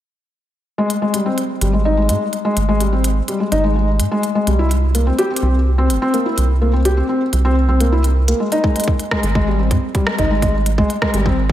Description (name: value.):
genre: IDM.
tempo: 126 BPM.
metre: 4/4.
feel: straight.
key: unclear.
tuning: A4 = 440 Hz.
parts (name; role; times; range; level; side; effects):
felt-muted upright piano; arpeggios; 0.8-11.4 s; G3 to G4; -18 LUFS; left 2 dB; low-pass filter, tape echo, slapback echo.
organic electronic drum kit; drums; 0.9-11.2 s; hi-hat, rim click; -24 LUFS; right 1 dB; none.
rubbery square bass; bass; 1.6-11.5 s; G1 to Ab2; -16 LUFS; right 1 dB; none.
electronic kick drum; drums; 8.6-11.5 s; none; -20 LUFS; right 1 dB; none.
room: moderate lush hall reverb, RT60 1.9 s, digital ambience.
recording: big arena sound.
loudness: -14 LUFS.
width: side -12 dB against mid.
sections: 0.8-11.5 A section.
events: filter sweep on analog synth bass 0.8-11.5.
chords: 0.8 N.C.; 4.6 C7(no3); 8.4 N.C..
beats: | 0.78 1.26 1.73 2.21 | 2.69 3.16 3.64 4.12 | 4.59 5.07 5.54 6.02 | 6.50 6.97 7.45 7.92 | 8.40 8.88 9.35 9.83 | 10.30 10.78 11.26.